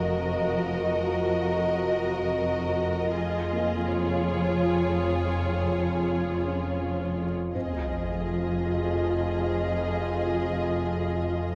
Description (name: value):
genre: cinematic, suspense film score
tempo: free time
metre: none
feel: none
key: F phrygian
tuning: A4 = 440 Hz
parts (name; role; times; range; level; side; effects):
- warm studio violin section; melody; 0.0-11.6 s; Db5 to Eb5; -34 LUFS; equal; none
- rich studio violin section; second line; 0.0-11.6 s; Ab4 to Bb4; -37 LUFS; equal; none
- warm studio viola section; accompaniment; 0.0-11.6 s; F4 to Gb4; -34 LUFS; equal; none
- dark studio double bass section; bass; 0.0-11.6 s; F1; -36 LUFS; equal; none
- warm studio cello section; bass; 0.0-11.6 s; F2; -35 LUFS; equal; none
- analog drone; drone; 0.0-11.6 s; F2; -34 LUFS; equal; chorus
- felt-muted upright piano; texture; 0.0-11.6 s; Bb3 to C6; -42 LUFS; equal; none
- sub drop; sound effects; 7.6-9.7 s; none; -38 LUFS; equal; none
room: wet scoring stage reverb, RT60 1.8 s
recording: vinyl crackle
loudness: -27 LUFS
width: mono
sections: 0.0-7.5 A section; 7.5-11.6 A section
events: impact 7.5-9.7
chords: 0.0 Ebmadd9/F; 3.2 Db/F